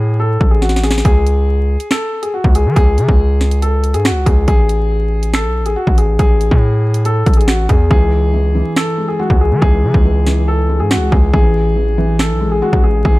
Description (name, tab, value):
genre	hip hop, drill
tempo	140 BPM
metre	4/4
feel	half-time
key	C# minor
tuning	A4 = 440 Hz
part	dark grand piano	melody	0.0-13.2 s	F#4 to A4	-18 LUFS	left 2 dB	none
part	distorted 808-style bass	bass	0.0-13.2 s	A1 to E3	-14 LUFS	equal	distortion
part	drill drum kit	drums	0.4-13.1 s	finger snaps, hi-hat, kick drum, snare drum	-14 LUFS	equal	none
part	felt-muted upright piano	accompaniment	7.9-13.2 s	E3 to G#3	-20 LUFS	left 1 dB	none
room	studio ambience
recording	dark, warm production, vinyl crackle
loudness	-11 LUFS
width	side -19 dB against mid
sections	0.0-13.2 A section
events	break 0.0-1.1; drum fill 0.6-1.1; hi-hats muted 7.9-13.2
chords	0.0 F#madd9/A (rootless); 1.1 C#5; 4.5 A5; 7.9 C#m; 11.3 A5